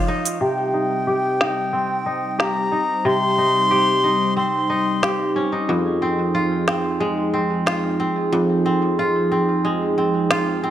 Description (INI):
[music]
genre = folktronica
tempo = 91 BPM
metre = 4/4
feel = straight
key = unclear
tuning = A4 = 438 Hz
[part]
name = bright baroque flute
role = melody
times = 0.0-5.3 s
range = G5 to C6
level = -21 LUFS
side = equal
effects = vintage 12-bit sampler grit, tape echo
[part]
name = warm analog pad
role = sustained chords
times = 0.0-10.7 s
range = F3 to Db5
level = -23 LUFS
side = right 2 dB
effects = chorus
[part]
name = kora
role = arpeggios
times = 0.0-10.7 s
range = F2 to G4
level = -21 LUFS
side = left 1 dB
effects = low-pass filter, tape echo
[part]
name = organic electronic drum kit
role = drums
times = 0.3-10.4 s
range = cabasa, hi-hat, snare drum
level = -23 LUFS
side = equal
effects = low-pass filter on perc, low-pass filter on hats, low-pass filter on snare
[sound]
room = moderate echo chamber reverb, RT60 2.2 s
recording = none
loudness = -18 LUFS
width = side -11 dB against mid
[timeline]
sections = 0.4-10.7 A section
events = filter sweep on kora 0.4-10.7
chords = 0.4 Cm; 5.7 Fm7